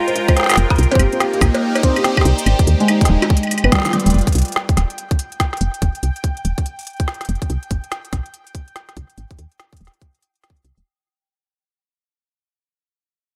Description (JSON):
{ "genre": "IDM", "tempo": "143 BPM", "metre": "4/4", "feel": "swing 62% on 16ths", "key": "unclear", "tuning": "A4 = 440 Hz", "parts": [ { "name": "phased analog pad", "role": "sustained chords", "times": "0.0-4.1 s", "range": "Ab3 to Eb5", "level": "-24 LUFS", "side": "equal", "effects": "phaser, chorus, sidechain pumping" }, { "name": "felt-muted upright piano", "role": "arpeggios", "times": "0.0-4.1 s", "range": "F3 to C5", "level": "-23 LUFS", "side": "equal", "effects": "tape echo" }, { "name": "bubbling stepped-filter texture", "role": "texture", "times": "0.0-10.9 s", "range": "G5", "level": "-34 LUFS", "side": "equal", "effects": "chorus, built-in reverb" }, { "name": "organic electronic drum kit", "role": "drums", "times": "0.1-10.8 s", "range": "cowbell, hi-hat, shaker, snare drum, woodblock", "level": "-23 LUFS", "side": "equal", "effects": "none" }, { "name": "electronic kick drum", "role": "drums", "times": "0.3-10.6 s", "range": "none", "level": "-19 LUFS", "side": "equal", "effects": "none" }, { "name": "woody FM bass", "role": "bass", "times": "0.6-10.8 s", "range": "D1 to Eb2", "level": "-18 LUFS", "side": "equal", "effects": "none" } ], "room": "light reverb", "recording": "none", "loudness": "-17 LUFS", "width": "mono", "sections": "0.0-4.1 A section; 4.1-10.9 B section", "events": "band accent 3.7; drum fill 3.9; fade-out 4.1-10.9", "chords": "0.0 Fm11; 0.8 Cm9; 2.5 Abmaj7; 3.3 G7b9; 4.1 N.C.; 9.2 Abmaj7(no3) (rootless)", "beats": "0.36 | 0.78 1.20 1.62 2.04 | 2.46 2.88 3.30 3.72 | 4.14 4.56 4.98 5.40 | 5.82 6.24 6.66 7.08 | 7.50 7.92 8.34 8.76 | 9.18 9.60 10.02 10.43" }